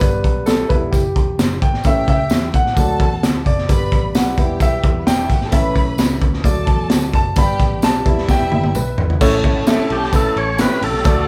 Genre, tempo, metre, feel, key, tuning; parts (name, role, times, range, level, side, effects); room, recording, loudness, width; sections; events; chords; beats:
uptempo 1960s-style soul; 131 BPM; 4/4; straight; A mixolydian; A4 = 440 Hz
warm grand piano; accompaniment; 0.0-11.3 s; A2 to B5; -22 LUFS; equal
vintage muted picked electric bass; bass; 0.0-11.3 s; E1 to A2; -27 LUFS; equal
crunchy breakbeat drum kit; drums; 0.0-11.2 s; crash cymbal, hi-hat, kick drum, ride cymbal, snare drum, toms; -19 LUFS; equal
tambourine; percussion; 0.0-11.2 s; -38 LUFS; equal
warm studio violin section; second line; 1.8-11.3 s; B3 to B5; -29 LUFS; equal
tonewheel organ; melody; 9.9-11.3 s; G4 to C#5; -22 LUFS; equal; overdrive, fast rotary speaker
light reverb; band playing live in one room; -16 LUFS; mono
0.0-9.2 A section; 9.2-11.3 B section
grand piano solo 0.0-9.2; drum fill 8.3-9.2
0.0 G; 0.7 Em; 1.9 A; 2.8 D; 3.7 G; 4.4 Em; 5.5 A; 6.5 D; 7.4 G; 8.1 Em; 9.2 A
| 0.02 0.48 0.94 1.40 | 1.86 2.32 2.78 3.24 | 3.70 4.16 4.62 5.07 | 5.53 5.99 6.45 6.91 | 7.37 7.83 8.29 8.75 | 9.21 9.67 10.13 10.59 | 11.05